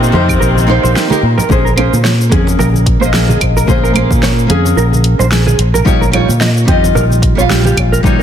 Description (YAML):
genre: sunset chillout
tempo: 110 BPM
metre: 4/4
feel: swing 57% on 16ths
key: Bb dorian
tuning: A4 = 441 Hz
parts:
  - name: nylon-string guitar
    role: accompaniment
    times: 0.0-8.2 s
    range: G3 to F5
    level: -15 LUFS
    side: moving between left 5 dB and right 3 dB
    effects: auto-pan, low-pass filter, digital delay
  - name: clear studio string section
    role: sustained chords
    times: 0.0-1.5 s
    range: C3 to C4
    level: -20 LUFS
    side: left 3 dB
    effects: none
  - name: fingered electric bass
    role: bass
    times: 0.0-8.2 s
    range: Bb1 to Bb2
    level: -12 LUFS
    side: equal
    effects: none
  - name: deep house drum kit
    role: drums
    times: 0.0-8.2 s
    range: claves, hi-hat, shaker, snare drum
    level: -18 LUFS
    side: equal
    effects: studio reverb
  - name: mellow electric guitar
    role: arpeggios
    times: 0.1-8.2 s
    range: G4 to Eb5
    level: -18 LUFS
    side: right 3 dB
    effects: ensemble chorus, digital delay
  - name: congas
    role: percussion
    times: 0.1-8.2 s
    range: none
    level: -20 LUFS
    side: right 3 dB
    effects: none
  - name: electronic kick drum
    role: drums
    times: 0.3-8.2 s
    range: none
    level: -16 LUFS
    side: equal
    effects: studio reverb
room: light reverb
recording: dense, heavily limited modern master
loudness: -9 LUFS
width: side -9 dB against mid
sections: 0.0-1.5 A section; 1.5-8.2 A section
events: none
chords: 0.0 Cm7/Bb; 1.5 Bbm9; 5.6 Eb9/Bb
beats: 0.41 0.95 | 1.50 2.04 2.59 3.14 | 3.68 4.23 4.77 5.32 | 5.86 6.41 6.96 7.50 | 8.04